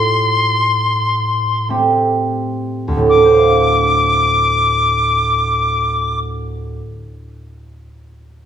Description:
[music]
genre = celtic folk, Celtic slow air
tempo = 40-54 BPM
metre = 3/4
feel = rubato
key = D minor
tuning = A4 = 439 Hz
[part]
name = bright reedy tin whistle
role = melody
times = 0.0-6.2 s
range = C6 to D6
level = -15 LUFS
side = left 2 dB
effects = none
[part]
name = concert harp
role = accompaniment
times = 0.0-6.9 s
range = D2 to F5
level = -16 LUFS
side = right 2 dB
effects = none
[sound]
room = moderate recital hall reverb, RT60 1.5 s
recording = small room ambience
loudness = -12 LUFS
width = side -9 dB against mid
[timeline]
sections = 0.0-3.1 A section; 3.1-7.3 B section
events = slowing down 0.0-3.1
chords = 0.0 Am7

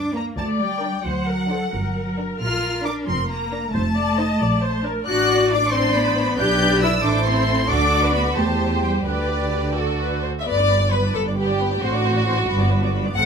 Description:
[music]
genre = quick classical-period movement for string orchestra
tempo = 90 BPM (dotted quarters)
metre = 6/8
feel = rubato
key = G minor, G major from 5.1 s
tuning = A4 = 440 Hz
[part]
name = rich symphonic violin section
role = melody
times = 0.0-13.3 s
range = D5 to G6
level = -26 LUFS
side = left 1 dB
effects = none
[part]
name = rich studio cello section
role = bass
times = 0.0-13.3 s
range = G2 to G4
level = -24 LUFS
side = equal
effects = none
[part]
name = rich studio double bass section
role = bass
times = 0.0-13.3 s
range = F1 to G2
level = -24 LUFS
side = right 1 dB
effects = none
[part]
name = rich studio violin section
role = second line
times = 0.2-13.3 s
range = D4 to F#5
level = -23 LUFS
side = equal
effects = none
[part]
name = rich studio viola section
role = accompaniment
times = 0.4-13.3 s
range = B3 to Eb5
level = -26 LUFS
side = left 2 dB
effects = none
[sound]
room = light reverb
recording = close, detailed microphones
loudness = -18 LUFS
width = side -6 dB against mid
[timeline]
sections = 0.0-10.5 A section; 10.5-13.3 B section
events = none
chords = 0.0 Gm; 1.1 D7; 1.7 Gm; 2.4 Bb; 3.7 F7; 4.4 Bb; 5.1 D7/A; 6.4 G/B; 7.0 Am; 7.7 D; 8.4 C/E; 9.1 G/D; 9.8 D; 10.5 G; 11.8 D7/A; 12.5 G

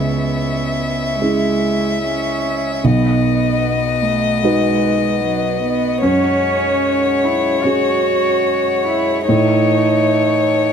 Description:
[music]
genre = neoclassical piano and strings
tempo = 75 BPM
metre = 4/4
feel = rubato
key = F# dorian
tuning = A4 = 440 Hz
[part]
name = warm violin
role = melody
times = 0.0-10.7 s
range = C#5 to E5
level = -19 LUFS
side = left 8 dB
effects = none
[part]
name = warm cello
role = second line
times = 0.0-10.7 s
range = F#3 to F#4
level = -20 LUFS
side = right 6 dB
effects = none
[part]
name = felt-muted upright piano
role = accompaniment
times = 0.0-10.7 s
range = B1 to B4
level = -19 LUFS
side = right 1 dB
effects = none
[part]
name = pedal harmonium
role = sustained chords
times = 0.0-10.7 s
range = E3 to D#5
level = -27 LUFS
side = right 2 dB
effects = none
[sound]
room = moderate studio reverb, RT60 0.8 s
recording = dark, warm production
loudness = -14 LUFS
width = side -7 dB against mid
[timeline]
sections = 0.0-10.7 A section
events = none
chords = 0.0 C#m7; 2.8 B; 6.0 F#sus2; 9.3 A

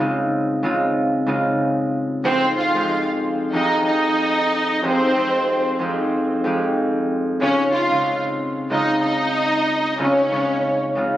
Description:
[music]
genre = hip hop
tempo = 93 BPM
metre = 4/4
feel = swing 55% on 16ths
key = F minor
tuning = A4 = 441 Hz
[part]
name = concert harp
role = accompaniment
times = 0.0-11.2 s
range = F2 to G4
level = -21 LUFS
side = equal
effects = cassette tape, high-pass filter, low-pass filter
[part]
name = warm studio violin section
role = melody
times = 2.3-10.8 s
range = C4 to F5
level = -19 LUFS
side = right 1 dB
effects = high-pass filter, low-pass filter, tape echo
[sound]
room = moderate studio ambience, RT60 0.5 s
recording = recorded on a phone in the room, studio reverb, compression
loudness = -18 LUFS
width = side -13 dB against mid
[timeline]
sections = 0.0-11.2 A section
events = break 0.0-2.3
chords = 0.0 Dbmaj7; 2.3 Fm9; 7.4 Dbmaj7

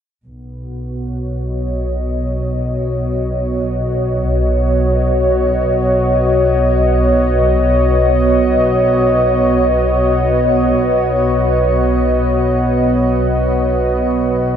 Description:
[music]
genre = ambient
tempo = free time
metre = none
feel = none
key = B major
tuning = A4 = 442 Hz
[part]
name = warm analog pad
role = sustained chords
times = 0.2-14.6 s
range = B3 to D#5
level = -14 LUFS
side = equal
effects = chorus, shimmer reverb
[part]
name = dark chamber double bass section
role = bass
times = 0.3-14.6 s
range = B1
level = -18 LUFS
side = equal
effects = none
[part]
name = analog drone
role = drone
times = 5.3-14.6 s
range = B3 to F#4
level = -28 LUFS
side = equal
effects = none
[sound]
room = wet lush hall reverb, RT60 2.9 s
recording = cassette tape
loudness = -13 LUFS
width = side -8 dB against mid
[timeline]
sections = 0.2-14.6 A section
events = none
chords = 0.2 Badd9

